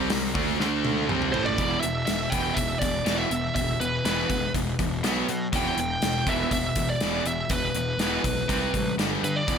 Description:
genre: hard rock.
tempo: 122 BPM.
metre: 4/4.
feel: straight.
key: E minor.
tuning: A4 = 441 Hz.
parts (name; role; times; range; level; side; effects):
overdriven semi-hollow guitar; riff; 0.0-9.6 s; E2 to D4; -31 LUFS; right 14 dB; spring reverb.
tight distorted guitar; riff; 0.0-9.6 s; E2 to D4; -30 LUFS; left 11 dB; distortion.
fuzz picked electric bass; bass; 0.0-9.6 s; E1 to B2; -32 LUFS; equal; overdrive.
gated 80s drum kit; drums; 0.1-9.6 s; hi-hat, kick drum, snare drum, toms; -29 LUFS; left 1 dB; none.
bluesy overdriven lead guitar; melody; 1.3-9.6 s; B4 to G5; -28 LUFS; right 2 dB; distortion.
room: light reverb.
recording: none.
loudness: -23 LUFS.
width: side -7 dB against mid.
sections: 0.0-1.6 A section; 1.6-9.6 B section.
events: drum fill 0.6-1.6.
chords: 0.0 C5; 0.6 D5; 1.1 C5; 1.6 E5; 5.0 B5; 5.5 Em; 8.5 C5; 9.0 G5.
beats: 0.11 0.60 1.09 | 1.59 2.08 2.57 3.07 | 3.56 4.05 4.55 5.04 | 5.53 6.03 6.52 7.01 | 7.51 8.00 8.49 8.99 | 9.48.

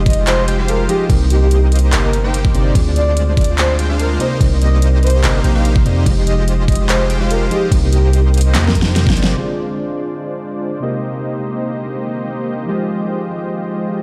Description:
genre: future bass.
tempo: 145 BPM.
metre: 4/4.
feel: half-time.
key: C minor.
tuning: A4 = 440 Hz.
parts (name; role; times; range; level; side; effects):
mellow tine electric piano; accompaniment; 0.0-14.0 s; C3 to D5; -25 LUFS; equal; sidechain pumping.
soft supersaw; riff; 0.0-14.0 s; Ab3 to G5; -25 LUFS; equal; sidechain pumping, low-pass filter.
long sustained 808-style bass; bass; 0.0-9.4 s; F1 to F2; -17 LUFS; equal; tube saturation, sidechain pumping.
breathy flute-like synth lead; melody; 0.1-8.8 s; G4 to Eb5; -24 LUFS; equal; tremolo, subtle chorus, sidechain pumping, dub echo.
dubstep drum kit; drums; 0.1-9.3 s; crash cymbal, handclaps, hi-hat, snare drum; -24 LUFS; equal; overdrive, low-pass filter on hats, low-pass filter on cymbals, low-pass filter on snare.
electronic kick drum; drums; 0.1-9.1 s; none; -17 LUFS; equal; overdrive.
shimmering ambient pad; sustained chords; 10.2-14.0 s; D3 to G5; -32 LUFS; equal; chorus, built-in reverb, phaser, sidechain pumping.
room: light reverb, digital ambience.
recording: played on a big sound system in a bare room, stone room reverb.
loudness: -16 LUFS.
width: mono.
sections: 0.0-9.4 A section; 9.4-14.0 B section.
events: drop 0.0-9.4; drum fill 8.5-9.4; filter sweep on ambient pad 9.4-14.0.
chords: 0.0 Fm9; 1.1 Cm7; 2.8 Dm7b5; 4.2 Cm7; 6.1 Fm9; 7.7 Cm7; 9.4 Dm7b5; 10.8 Cm7; 12.7 Fm9.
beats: 0.27 0.68 | 1.10 1.51 1.93 2.34 | 2.75 3.17 3.58 3.99 | 4.41 4.82 5.24 5.65 | 6.06 6.48 6.89 7.30 | 7.72 8.13 8.55 8.96 | 9.37 9.79 10.20 10.62 | 11.03 11.44 11.86 12.27 | 12.68 13.10 13.51 13.93.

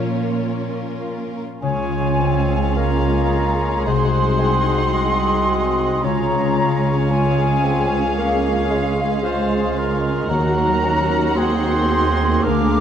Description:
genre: classical, slow romantic movement for symphony orchestra.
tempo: 56 BPM.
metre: 4/4.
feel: rubato.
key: Db major.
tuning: A4 = 441 Hz.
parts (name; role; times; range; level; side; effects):
rich symphonic violin section; melody; 0.0-12.8 s; Db5 to Gb5; -33 LUFS; left 5 dB; none.
rich studio violin section; second line; 0.0-12.8 s; F4 to Bb4; -32 LUFS; left 2 dB; none.
rich studio viola section; accompaniment; 0.0-12.8 s; Bb3 to Eb4; -29 LUFS; right 4 dB; none.
concert harp; arpeggios; 0.0-12.8 s; Bb2 to Gb5; -25 LUFS; left 4 dB; none.
rich symphonic cello section; bass; 0.0-12.8 s; C2 to Bb2; -24 LUFS; right 3 dB; none.
clear cor anglais; second line; 1.6-12.8 s; Ab4 to Eb5; -28 LUFS; right 2 dB; none.
flute section; second line; 1.6-12.8 s; F5 to D6; -23 LUFS; equal; none.
warm clarinet; second line; 1.6-12.8 s; D4 to Ab4; -27 LUFS; left 1 dB; none.
mellow bassoon; accompaniment; 1.6-12.8 s; Gb3 to Db4; -27 LUFS; equal; none.
dark French horn section; sustained chords; 1.6-12.8 s; Ab3 to Ab4; -26 LUFS; left 5 dB; none.
rich symphonic double bass section; bass; 1.6-12.8 s; C2 to Eb2; -25 LUFS; right 4 dB; none.
room: wet concert hall reverb, RT60 1.9 s.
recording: dark, warm production.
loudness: -16 LUFS.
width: side -8 dB against mid.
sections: 0.0-1.6 A section; 1.6-12.8 B section.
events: none.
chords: 0.0 Bbm; 1.6 Db; 3.9 Ab7/C; 6.0 Db; 10.3 Ebm.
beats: 0.38 | 1.63 2.77 3.87 4.94 | 6.04 7.11 8.17 9.24 | 10.30 11.38 12.46.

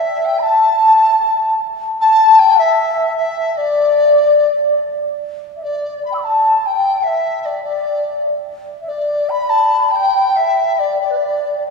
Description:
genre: chinese traditional, Chinese chamber ensemble.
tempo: 70-78 BPM.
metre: 2/4.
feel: rubato.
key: D zhi mode.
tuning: A4 = 440 Hz.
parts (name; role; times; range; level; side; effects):
mellow large dizi; melody; 0.0-11.6 s; D5 to E6; -15 LUFS; left 1 dB; none.
bright xiao; second line; 0.0-11.6 s; B4 to B5; -16 LUFS; left 2 dB; none.
room: wet church reverb, RT60 3.3 s.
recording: recorded in a church or concert hall, small room ambience.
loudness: -12 LUFS.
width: side -4 dB against mid.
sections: 0.0-5.2 A section; 5.2-11.7 B section.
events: none.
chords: none.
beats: | 0.46 1.23 | 2.00 2.77 | 3.56 4.38 | 5.21 6.05 | 6.87 7.68 | 8.49 9.32 | 10.16 11.01.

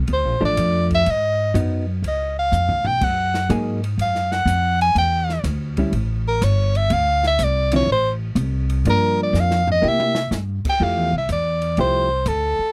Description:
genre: jazz, small-group swing and bop.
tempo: 123 BPM.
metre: 4/4.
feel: swing 68% on 8ths.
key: F major.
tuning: A4 = 440 Hz.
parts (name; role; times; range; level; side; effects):
upright bass; bass; 0.0-12.6 s; G1 to C3; -24 LUFS; equal; none.
breathy soprano saxophone; melody; 0.1-12.7 s; A4 to Ab5; -22 LUFS; equal; none.
open jazz drum kit; drums; 0.1-12.4 s; crash cymbal, hi-hat, kick drum, ride cymbal, snare drum, toms; -34 LUFS; equal; none.
hollow-body jazz guitar; accompaniment; 0.4-12.1 s; D3 to Ab4; -25 LUFS; equal; none.
room: little or no reverb.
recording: dry, close 1970s-style studio recording.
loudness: -20 LUFS.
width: mono.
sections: 0.0-10.8 A section; 10.8-12.7 B section.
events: soprano saxophone solo 0.0-10.8; drum fill 2.5-3.0, 9.3-10.3.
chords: 0.0 Bbmaj7; 1.1 Abm7; 2.0 Db7; 3.0 Gb69; 5.0 Dsus24; 5.9 Gsus2; 6.9 D7(no3); 8.9 Gm7; 9.8 C7; 10.8 Fmaj9.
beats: 0.08 0.57 | 1.05 1.54 2.03 2.52 | 3.01 3.50 3.99 4.47 | 4.96 5.45 5.94 6.42 | 6.91 7.40 7.88 8.37 | 8.86 9.35 9.83 10.32 | 10.80 11.29 11.78 12.27.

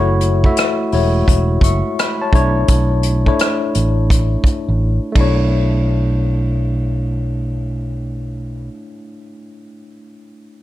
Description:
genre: R&B, neo-soul.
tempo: 85 BPM.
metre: 4/4.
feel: swing 63% on 16ths.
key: B minor.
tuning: A4 = 439 Hz.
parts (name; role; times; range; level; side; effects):
tine electric piano; accompaniment; 0.0-10.6 s; G#3 to C#6; -20 LUFS; left 2 dB; medium stereo tremolo.
fretless electric bass; bass; 0.0-8.7 s; E1 to B1; -17 LUFS; equal; none.
unplugged drum kit; drums; 0.2-5.4 s; hi-hat, kick drum, ride cymbal, rim click; -17 LUFS; equal; none.
room: little or no reverb.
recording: none.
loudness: -14 LUFS.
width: side -14 dB against mid.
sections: 0.0-5.5 A section; 5.5-8.3 B section.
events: drum fill 4.8-5.5.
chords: 0.0 F#m7; 2.3 Bm11.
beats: 0.57 1.27 1.98 | 2.69 3.39 4.10 4.80 | 5.51 6.21 6.92 7.63.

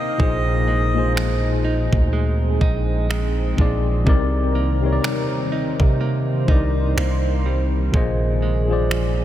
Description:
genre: contemporary R&B.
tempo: 62 BPM.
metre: 4/4.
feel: swing 58% on 16ths.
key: unclear.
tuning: A4 = 441 Hz.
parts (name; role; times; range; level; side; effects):
melodica; melody; 0.0-1.1 s; Eb5; -28 LUFS; equal; analog delay.
mellow tine electric piano; accompaniment; 0.0-9.2 s; Bb2 to Eb5; -23 LUFS; left 2 dB; medium stereo tremolo.
warm analog pad; sustained chords; 0.0-9.2 s; Eb3 to C5; -29 LUFS; equal; chorus.
direct-recorded clean electric guitar; arpeggios; 0.0-9.2 s; Bb2 to G4; -29 LUFS; right 5 dB; tremolo, analog delay.
long sustained 808-style bass; bass; 0.2-9.2 s; Bb1 to C3; -21 LUFS; equal; none.
trap drum kit; drums; 0.2-9.2 s; finger snaps, kick drum; -21 LUFS; equal; none.
room: moderate cathedral reverb, RT60 5.6 s.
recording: dreamy mix soaked in reverb.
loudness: -17 LUFS.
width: side -12 dB against mid.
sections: 0.0-9.2 A section.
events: none.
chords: 0.2 Bb7sus4; 4.1 Cm7; 7.9 Bb7sus4.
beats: | 0.20 1.17 2.13 3.10 | 4.07 5.04 6.00 6.97 | 7.94 8.91.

